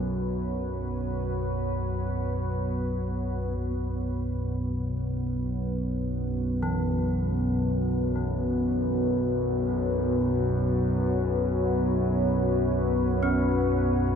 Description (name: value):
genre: dark ambient drone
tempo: free time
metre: none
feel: none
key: unclear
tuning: A4 = 440 Hz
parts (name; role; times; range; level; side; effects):
- deep dark ambient pad; sustained chords; 0.0-14.2 s; B3 to C#5; -28 LUFS; left 1 dB; chorus, built-in reverb
- analog drone; drone; 0.0-14.2 s; B1 to F#2; -28 LUFS; equal; chorus
- gamelan-type bronze metallophone; arpeggios; 6.6-14.2 s; E3 to C#4; -34 LUFS; equal; ping-pong delay
room: wet cathedral reverb, RT60 6.8 s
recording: in a vast, echoing space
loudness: -25 LUFS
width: side -7 dB against mid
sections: 0.0-3.6 A section; 3.6-14.2 B section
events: none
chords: 0.0 B5